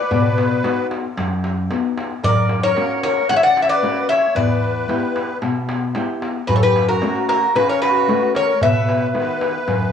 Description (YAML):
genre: greek folk, Greek bouzouki band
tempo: 113 BPM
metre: 4/4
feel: straight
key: unclear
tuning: A4 = 441 Hz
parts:
  - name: Greek bouzouki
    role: melody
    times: 0.0-9.9 s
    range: A#4 to F#5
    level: -18 LUFS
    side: left 2 dB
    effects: cassette tape, plate reverb, tape echo
  - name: musette accordion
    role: second line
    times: 0.0-9.9 s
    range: F#4 to D5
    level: -24 LUFS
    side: left 3 dB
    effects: cassette tape, plate reverb
  - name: flamenco guitar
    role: accompaniment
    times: 0.1-9.9 s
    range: E2 to G4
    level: -22 LUFS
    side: left 1 dB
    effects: cassette tape, plate reverb
  - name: darbuka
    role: percussion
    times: 0.1-9.9 s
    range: none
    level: -24 LUFS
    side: equal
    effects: none
room: moderate small room reverb, RT60 0.5 s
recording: home recording on cassette, small room ambience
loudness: -16 LUFS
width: side -8 dB against mid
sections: 0.0-9.9 A section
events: none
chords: 0.1 B; 2.2 F#; 4.4 Em; 6.5 F#m; 8.6 B